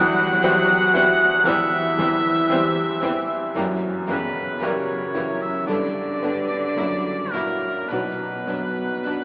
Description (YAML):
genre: classical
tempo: 52-58 BPM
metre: 4/4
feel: rubato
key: unclear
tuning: A4 = 440 Hz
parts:
  - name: warm grand piano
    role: melody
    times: 0.0-9.2 s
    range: B1 to C5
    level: -24 LUFS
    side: equal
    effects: none
  - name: warm cor anglais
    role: second line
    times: 0.0-9.2 s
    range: A#4 to F#5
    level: -22 LUFS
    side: equal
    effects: none
  - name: mellow French horn section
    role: sustained chords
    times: 0.0-9.2 s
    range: A#3 to F#4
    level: -29 LUFS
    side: equal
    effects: none
  - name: warm studio cello section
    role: bass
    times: 0.0-9.2 s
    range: A#2 to F#3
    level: -32 LUFS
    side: equal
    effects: none
  - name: rich studio violin section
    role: melody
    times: 0.4-9.1 s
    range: A#3 to E4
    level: -33 LUFS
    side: equal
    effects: none
  - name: rich studio violin section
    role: second line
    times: 0.4-9.2 s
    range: G3 to B3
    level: -34 LUFS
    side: equal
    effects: none
  - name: warm studio viola section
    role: accompaniment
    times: 0.4-9.1 s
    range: D3 to F#3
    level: -32 LUFS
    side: equal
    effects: none
  - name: rich studio double bass section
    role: bass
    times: 0.4-9.1 s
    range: B1 to G2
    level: -38 LUFS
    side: equal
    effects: none
room: wet cathedral reverb, RT60 5.3 s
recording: recorded in a church or concert hall, AM radio sound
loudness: -18 LUFS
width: side -28 dB against mid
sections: 0.0-9.2 A section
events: none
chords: 0.0 C/E; 3.6 F#7b9; 5.7 G; 6.8 F#7; 7.9 Bm